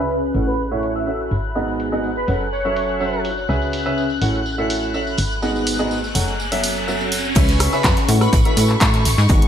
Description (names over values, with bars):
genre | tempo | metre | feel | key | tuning
piano house | 124 BPM | 4/4 | straight | unclear | A4 = 441 Hz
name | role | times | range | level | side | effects
airy dreamy lead | melody | 0.0-3.2, 7.7-8.6 s | B4 to E5 | -25 LUFS | right 1 dB | chorus
warm chamber violin section | sustained chords | 0.0-9.5 s | C#6 to F#6 | -28 LUFS | left 4 dB | sidechain pumping
warm baby grand piano | riff | 0.0-9.5 s | G#2 to F#5 | -23 LUFS | right 1 dB | lush chorus, sidechain pumping
plucky analog bass | bass | 0.0-9.5 s | F#1 to A2 | -22 LUFS | equal | sidechain pumping
warbly tape-like pad | texture | 0.0-9.5 s | C#4 to B5 | -28 LUFS | left 2 dB | chorus, built-in reverb, sidechain pumping
tambourine | percussion | 0.1-9.5 s | none | -31 LUFS | right 6 dB | none
punchy analog drum machine | drums | 0.3-9.5 s | crash cymbal, handclaps, hi-hat, rim click | -24 LUFS | equal | gated reverb
riser | sound effects | 5.1-7.4 s | none | -28 LUFS | right 2 dB | none
loose indie drum kit | drums | 7.3-9.4 s | hi-hat, snare drum | -29 LUFS | right 2 dB | sidechain pumping on hats, high-pass filter on hats, high-pass filter on snare, high-pass filter on room, gated reverb
electronic kick drum | drums | 7.4-9.4 s | none | -17 LUFS | equal | none
room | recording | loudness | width
light reverb, studio ambience | bright 1980s-style digital production, low-pass filter | -17 LUFS | side -9 dB against mid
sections
0.0-7.4 A section; 7.4-9.5 B section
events
filter sweep on drum 0.0-7.4; filter sweep on violin section 0.0-7.4; filter sweep 0.0-7.4; riser 5.1-7.4; drop 7.4-9.5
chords
0.3 A6; 1.3 G#m7; 2.3 F#m7; 3.5 C#m7; 4.2 A6; 5.2 G#m7; 6.2 F#m7; 7.4 C#m7; 8.1 A6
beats
0.10 0.59 1.07 | 1.55 2.04 2.52 3.01 | 3.49 3.97 4.46 4.94 | 5.42 5.91 6.39 6.88 | 7.36 7.84 8.33 8.81 | 9.30